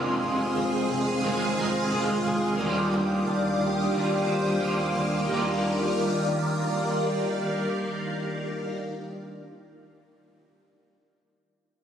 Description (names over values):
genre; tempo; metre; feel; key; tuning
dream pop; 89 BPM; 4/4; straight; Eb major; A4 = 440 Hz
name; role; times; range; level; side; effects
electric guitar at the edge of break-up; accompaniment; 0.0-9.5 s; F2 to F4; -27 LUFS; right 1 dB; tremolo, ensemble chorus
phased string machine; sustained chords; 0.0-8.7 s; Eb3 to Eb6; -29 LUFS; equal; ensemble chorus, phaser
picked twelve-string acoustic guitar; arpeggios; 0.0-9.5 s; F2 to F4; -33 LUFS; left 3 dB; ensemble chorus, digital delay
vintage muted picked electric bass; bass; 0.0-9.5 s; F1 to Eb2; -34 LUFS; equal; none
kora; texture; 1.6-9.4 s; Bb4 to C5; -41 LUFS; right 1 dB; none
room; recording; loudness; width
wet huge ambient reverb, RT60 4.3 s; recorded on a phone in the room, club reverb; -24 LUFS; side -9 dB against mid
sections
0.0-5.3 A section; 5.3-8.0 B section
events
none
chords
0.0 Fm7; 2.6 Ebmaj9